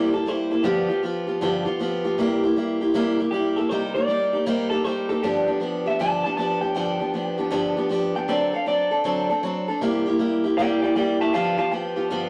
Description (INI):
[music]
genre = rock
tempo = 157 BPM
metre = 4/4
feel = swing 65% on 8ths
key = G mixolydian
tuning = A4 = 439 Hz
[part]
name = electric guitar through a small old amp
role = melody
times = 0.0-1.0, 3.3-12.1 s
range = G4 to A5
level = -28 LUFS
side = equal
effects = tape echo
[part]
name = picked acoustic archtop guitar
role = accompaniment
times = 0.0-12.3 s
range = G2 to A4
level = -24 LUFS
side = equal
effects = none
[sound]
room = moderate stone room reverb, RT60 1.0 s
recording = rough rehearsal-room recording, warm saturation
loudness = -23 LUFS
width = mono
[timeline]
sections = 0.0-12.3 A section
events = clean electric guitar solo 0.0-12.3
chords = 0.0 C7; 0.7 G7; 2.2 C7; 3.7 Cm7; 5.2 G7; 8.3 D7; 9.8 C7; 11.3 G7